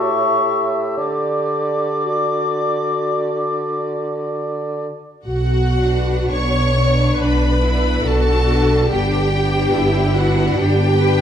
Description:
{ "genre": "classical, slow romantic movement for symphony orchestra", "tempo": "54-74 BPM", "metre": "4/4", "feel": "rubato", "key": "D major, B minor from 5.3 s", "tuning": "A4 = 443 Hz", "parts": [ { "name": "clear oboe", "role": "second line", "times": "0.0-4.9 s", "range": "D5 to E5", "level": "-26 LUFS", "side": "equal", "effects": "none" }, { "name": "silver concert flute", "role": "second line", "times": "0.0-4.1 s", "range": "C#6 to D6", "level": "-22 LUFS", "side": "left 4 dB", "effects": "none" }, { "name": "warm clarinet", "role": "second line", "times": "0.0-4.9 s", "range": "F#4 to G4", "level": "-25 LUFS", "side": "left 1 dB", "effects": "none" }, { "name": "warm bassoon", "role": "accompaniment", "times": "0.0-4.9 s", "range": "A2 to D3", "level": "-22 LUFS", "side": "right 2 dB", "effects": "none" }, { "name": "clear studio violin section", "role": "melody", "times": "5.3-11.2 s", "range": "F#5 to C#6", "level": "-25 LUFS", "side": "left 2 dB", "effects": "none" }, { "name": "rich studio viola section", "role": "accompaniment", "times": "5.3-11.2 s", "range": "F#4 to C#5", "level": "-20 LUFS", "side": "equal", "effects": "none" }, { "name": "rich studio double bass section", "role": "bass", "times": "5.3-11.2 s", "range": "G1 to B1", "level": "-17 LUFS", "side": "equal", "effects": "none" }, { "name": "rich studio violin section", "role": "second line", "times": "5.8-11.2 s", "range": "B3 to D4", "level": "-23 LUFS", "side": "left 1 dB", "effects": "none" }, { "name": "rich studio cello section", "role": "bass", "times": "7.2-11.2 s", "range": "D4 to B4", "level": "-23 LUFS", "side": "equal", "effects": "none" } ], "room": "wet stone room reverb, RT60 1.3 s", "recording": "dark, warm production", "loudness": "-16 LUFS", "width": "side -9 dB against mid", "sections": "0.0-5.3 A section; 5.3-11.2 B section", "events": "none", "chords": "0.0 A7; 1.0 D; 5.3 Bm; 8.9 G", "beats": "| 0.97 2.04 3.12 4.18 | 5.26 6.30 7.20 8.05 | 8.90 9.75 10.57" }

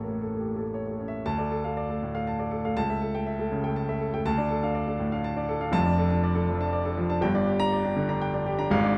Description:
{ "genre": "classical, virtuoso piano study", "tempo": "121 BPM", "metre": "3/4", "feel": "rubato", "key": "D minor", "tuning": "A4 = 441 Hz", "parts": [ { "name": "warm baby grand piano", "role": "solo", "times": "0.0-9.0 s", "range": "F1 to Bb5", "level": "-27 LUFS", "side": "equal", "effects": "none" } ], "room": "moderate large studio reverb, RT60 0.8 s", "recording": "none", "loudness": "-27 LUFS", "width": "mono", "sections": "0.0-1.3 A section; 1.3-9.0 B section", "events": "none", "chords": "0.0 A; 1.3 Dm; 2.8 A7/C#; 4.3 Dm; 5.7 Dm/F; 7.2 Gm", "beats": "0.22 0.74 | 1.27 1.78 2.27 | 2.77 3.28 3.78 | 4.27 4.77 5.26 | 5.75 6.24 6.73 | 7.22 7.72 8.21 | 8.71" }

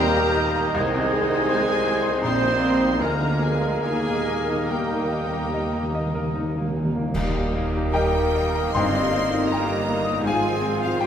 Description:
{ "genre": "classical, romantic movement for piano and orchestra", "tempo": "70-82 BPM", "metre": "4/4", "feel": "rubato", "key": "Eb major", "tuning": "A4 = 440 Hz", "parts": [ { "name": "clear baby grand piano", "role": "melody", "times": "0.0-11.1 s", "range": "Bb1 to Eb6", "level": "-26 LUFS", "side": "left 1 dB", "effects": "none" }, { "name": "clear chamber violin section", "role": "melody", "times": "0.0-11.1 s", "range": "F4 to C6", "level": "-34 LUFS", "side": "left 3 dB", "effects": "none" }, { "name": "bright symphonic violin section", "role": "second line", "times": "0.0-11.1 s", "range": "Bb3 to C6", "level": "-34 LUFS", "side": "left 4 dB", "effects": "none" }, { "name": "clear oboe", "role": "second line", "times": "0.0-11.1 s", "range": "C5 to F5", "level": "-33 LUFS", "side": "equal", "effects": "none" }, { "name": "mellow hollow small flute group", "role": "second line", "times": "0.0-11.1 s", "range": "Ab4 to Ab6", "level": "-31 LUFS", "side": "left 3 dB", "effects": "none" }, { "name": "warm clarinet", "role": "second line", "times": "0.0-11.1 s", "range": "Eb4 to C5", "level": "-33 LUFS", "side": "left 2 dB", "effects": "none" }, { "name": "warm bassoon", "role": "accompaniment", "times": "0.0-11.1 s", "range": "Eb3 to C4", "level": "-33 LUFS", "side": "right 2 dB", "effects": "none" }, { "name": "warm symphonic viola section", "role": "accompaniment", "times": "0.0-11.1 s", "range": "Eb3 to Ab4", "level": "-32 LUFS", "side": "equal", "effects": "none" }, { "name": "mellow French horn section", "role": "sustained chords", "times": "0.0-11.1 s", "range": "G3 to F4", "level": "-33 LUFS", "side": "left 2 dB", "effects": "none" }, { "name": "warm trombone section", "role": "sustained chords", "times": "0.0-11.1 s", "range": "C3 to Bb3", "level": "-34 LUFS", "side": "right 5 dB", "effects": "none" }, { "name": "mellow trumpet", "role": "stabs", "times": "0.0-6.3 s", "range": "G4 to C5", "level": "-30 LUFS", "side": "right 4 dB", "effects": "none" }, { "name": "clear symphonic cello section", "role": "bass", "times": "0.0-11.1 s", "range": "F3 to C4", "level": "-32 LUFS", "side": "right 4 dB", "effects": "none" }, { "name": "clear tuba", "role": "bass", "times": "0.0-11.1 s", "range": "G1 to Eb2", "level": "-32 LUFS", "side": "right 3 dB", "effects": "none" }, { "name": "rich symphonic double bass section", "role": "bass", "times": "0.0-11.1 s", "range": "G1 to Eb2", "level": "-31 LUFS", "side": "right 2 dB", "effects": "none" }, { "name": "timpani", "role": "percussion", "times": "2.2-9.8 s", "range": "G2 to Eb3", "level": "-30 LUFS", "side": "equal", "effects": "none" }, { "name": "clash cymbals and concert bass drum", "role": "percussion", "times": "7.1-8.7 s", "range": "none", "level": "-33 LUFS", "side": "equal", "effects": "none" } ], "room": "wet recital hall reverb, RT60 1.4 s", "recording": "minimal, uncompressed stereo recording", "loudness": "-20 LUFS", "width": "side -8 dB against mid", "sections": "0.0-7.1 A section; 7.1-11.1 A section", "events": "timpani fill 3.8-7.1; band accent 7.1-7.9", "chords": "0.0 Eb; 0.8 Ab/C; 2.2 Eb/Bb; 3.0 Bb7/D; 3.8 Eb; 8.7 Eb/G; 10.3 Fm/Ab", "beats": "0.01 | 0.75 1.50 2.24 3.01 | 3.83 4.69 5.52 6.34 | 7.15 7.92 8.74 9.50 | 10.25 11.00" }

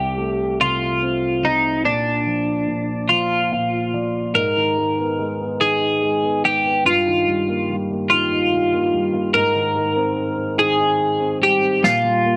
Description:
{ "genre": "six-eight pop ballad", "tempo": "48 BPM (dotted quarters)", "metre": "6/8", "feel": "straight", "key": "unclear", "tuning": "A4 = 440 Hz", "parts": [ { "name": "twelve-string electric guitar", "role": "melody", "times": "0.0-12.4 s", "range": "D4 to Bb4", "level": "-20 LUFS", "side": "equal", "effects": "subtle chorus" }, { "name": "dark baby grand piano", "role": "accompaniment", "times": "0.0-12.4 s", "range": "C2 to F5", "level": "-26 LUFS", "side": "equal", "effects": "none" }, { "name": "snare drum", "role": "drums", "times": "11.8-12.0 s", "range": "none", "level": "-25 LUFS", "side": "equal", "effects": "none" } ], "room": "light reverb, small room ambience", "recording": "none", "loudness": "-19 LUFS", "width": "mono", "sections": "0.0-4.4 A section; 4.4-12.4 B section", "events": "grand piano fill 3.1-4.4; drum fill 11.8-12.4", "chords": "0.0 F/C; 1.8 Bb; 4.4 Abmadd9; 6.9 Ebadd9/G; 9.3 Abmaj7; 11.8 Gm7/Bb", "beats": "0.60 | 1.84 3.10 | 4.36 5.61 | 6.86 8.10 | 9.34 10.58 | 11.82" }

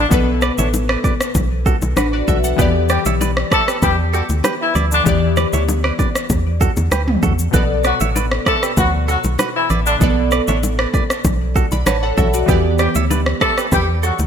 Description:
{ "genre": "afrobeats", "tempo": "97 BPM", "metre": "4/4", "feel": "straight", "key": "B minor", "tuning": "A4 = 441 Hz", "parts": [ { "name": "dark horn section", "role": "second line", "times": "0.0-14.2 s", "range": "D3 to A4", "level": "-20 LUFS", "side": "left 2 dB", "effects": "ping-pong delay" }, { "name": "glassy digital keys", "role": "accompaniment", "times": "0.0-14.3 s", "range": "B2 to B5", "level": "-22 LUFS", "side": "left 2 dB", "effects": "chorus" }, { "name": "organ-like FM bass", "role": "bass", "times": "0.0-14.3 s", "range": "A1 to E2", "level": "-19 LUFS", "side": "equal", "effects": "none" }, { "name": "deep house drum kit", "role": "drums", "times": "0.1-14.3 s", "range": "kick drum, rim click, shaker, toms", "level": "-19 LUFS", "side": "equal", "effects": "gated reverb" }, { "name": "congas and bongos", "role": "percussion", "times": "0.1-14.3 s", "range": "none", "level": "-25 LUFS", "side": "left 2 dB", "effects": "none" }, { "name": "direct-recorded clean electric guitar", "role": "riff", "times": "0.4-14.1 s", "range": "F#4 to E5", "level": "-24 LUFS", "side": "right 7 dB", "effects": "phaser, ping-pong delay" } ], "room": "light reverb, digital ambience", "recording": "bright 1980s-style digital production", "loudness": "-14 LUFS", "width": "side -8 dB against mid", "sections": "0.0-14.3 A section", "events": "none", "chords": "0.0 Bm7; 2.6 Em7; 7.5 Bm7", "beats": "| 0.11 0.73 1.35 1.97 | 2.59 3.21 3.83 4.44 | 5.06 5.68 6.30 6.92 | 7.54 8.15 8.77 9.39 | 10.01 10.63 11.25 11.87 | 12.48 13.10 13.72" }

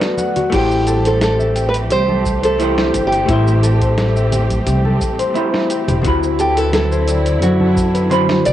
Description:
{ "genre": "sunset chillout", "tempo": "87 BPM", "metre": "4/4", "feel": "straight", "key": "A dorian", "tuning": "A4 = 440 Hz", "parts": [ { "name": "vintage hollow-body jazz guitar", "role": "accompaniment", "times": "0.0-8.5 s", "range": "D3 to B5", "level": "-21 LUFS", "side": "moving between left 5 dB and right 3 dB", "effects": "auto-pan, cassette tape, tape echo" }, { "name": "warm symphonic string section", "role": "sustained chords", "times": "0.0-8.5 s", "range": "D3 to G4", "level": "-24 LUFS", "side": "right 2 dB", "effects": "cassette tape" }, { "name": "concert harp", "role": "arpeggios", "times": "0.0-8.5 s", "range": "F#4 to G5", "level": "-21 LUFS", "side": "left 4 dB", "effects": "cassette tape, tape echo, plate reverb" }, { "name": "dusty soul sampler-style drum kit", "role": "drums", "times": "0.0-8.5 s", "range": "crash cymbal, hi-hat, shaker, snare drum", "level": "-24 LUFS", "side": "equal", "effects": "cassette tape" }, { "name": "congas", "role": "percussion", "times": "0.2-8.4 s", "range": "none", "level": "-27 LUFS", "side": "right 2 dB", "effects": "none" }, { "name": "nylon-string guitar", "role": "melody", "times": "0.5-8.5 s", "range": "E4 to D5", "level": "-19 LUFS", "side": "right 1 dB", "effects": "cassette tape, tape echo" }, { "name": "upright bass", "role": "bass", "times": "0.5-8.5 s", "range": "E1 to F#2", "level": "-17 LUFS", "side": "equal", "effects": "tube saturation" }, { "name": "electronic kick drum", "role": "drums", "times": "0.5-8.5 s", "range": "none", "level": "-23 LUFS", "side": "equal", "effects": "cassette tape" } ], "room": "moderate studio reverb, RT60 0.6 s", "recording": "home recording on cassette, nothing above 10.5 kHz", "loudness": "-13 LUFS", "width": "side -12 dB against mid", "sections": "0.5-8.5 A section", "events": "break 0.0-0.5", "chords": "0.0 Bm7; 0.5 Am7; 6.0 D13", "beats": "| 0.52 1.21 1.90 2.59 | 3.28 3.97 4.66 5.35 | 6.04 6.73 7.42 8.11" }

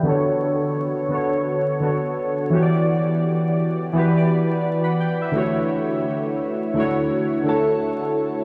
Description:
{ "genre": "lo-fi hip hop", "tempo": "85 BPM", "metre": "4/4", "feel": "swing 58% on 16ths", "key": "E dorian", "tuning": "A4 = 440 Hz", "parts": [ { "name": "warbly lo-fi synth keys", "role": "accompaniment", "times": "0.0-8.4 s", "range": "D3 to B5", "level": "-22 LUFS", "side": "equal", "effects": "chorus, cassette tape, low-pass filter" }, { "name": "soft struck synth lead", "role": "melody", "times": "7.5-8.1 s", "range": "A4", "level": "-24 LUFS", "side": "equal", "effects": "chorus, diffuse ambient delay" } ], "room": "wet huge ambient reverb, RT60 6.2 s", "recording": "dreamy mix soaked in reverb, vinyl crackle, small room ambience", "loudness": "-21 LUFS", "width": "mono", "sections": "0.0-8.4 A section", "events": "filter sweep on synth keys 0.0-8.4", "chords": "0.1 Bm7/D; 2.5 Em7; 5.4 Dmaj9", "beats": "| 0.06 0.77 1.47 2.18 | 2.88 3.59 4.30 5.00 | 5.71 6.41 7.12 7.83" }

